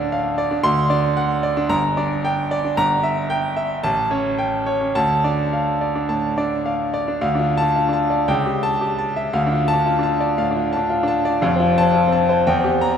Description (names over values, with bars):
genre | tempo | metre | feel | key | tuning
classical, virtuoso piano study | 113 BPM | 4/4 | rubato | D minor | A4 = 440 Hz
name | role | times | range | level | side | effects
clear concert grand piano | solo | 0.0-13.0 s | F1 to C6 | -17 LUFS | equal | none
room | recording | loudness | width
wet church reverb, RT60 2.8 s | recorded in a church or concert hall | -17 LUFS | side -8 dB against mid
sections
0.0-7.2 A section; 7.2-13.0 B section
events
none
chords
0.0 Dm; 0.6 D7; 1.7 Gm; 2.8 Edim/G; 3.8 A7; 5.0 Dm; 8.3 A7/C#; 9.3 Dm; 11.4 F; 12.5 C7/E